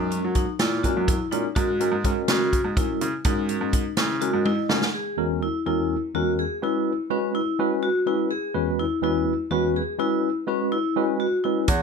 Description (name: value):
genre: progressive instrumental, band music in an uneven meter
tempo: 249 BPM (eighths)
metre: 7/8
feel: straight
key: F# mixolydian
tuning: A4 = 435 Hz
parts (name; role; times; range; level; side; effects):
- tine electric piano; accompaniment; 0.0-11.7 s; E2 to F#5; -25 LUFS; right 1 dB; medium stereo tremolo
- vibraphone with medium hard mallets; arpeggios; 0.0-11.8 s; C#4 to G#4; -26 LUFS; left 3 dB; none
- bright baby grand piano; bass; 0.0-4.8, 11.7-11.8 s; E2 to F#3; -27 LUFS; right 2 dB; none
- swinging big-band drum kit; drums; 0.1-4.9, 11.7-11.8 s; hi-hat, kick drum, snare drum, toms; -24 LUFS; right 1 dB; none
room: moderate studio reverb, RT60 0.7 s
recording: none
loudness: -21 LUFS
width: side -5 dB against mid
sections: 0.0-4.9 A section; 4.9-11.8 B section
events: tine electric piano fill 4.2-4.9; drum fill 4.5-4.9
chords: 0.0 F#7; 1.6 G#7sus4; 4.9 E; 6.6 F#7sus4; 8.3 E; 10.0 C#m7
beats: 0.12 0.36 0.60 0.84 1.08 1.32 | 1.56 1.80 2.04 2.28 2.52 2.77 3.01 | 3.25 3.49 3.73 3.97 4.21 4.45 4.70 | 4.94 5.18 5.42 5.66 5.90 6.14 6.38 | 6.62 6.87 7.11 7.35 7.59 7.83 8.07 | 8.31 8.55 8.79 9.04 9.28 9.52 9.76 | 10.00 10.24 10.48 10.72 10.96 11.20 11.45 | 11.69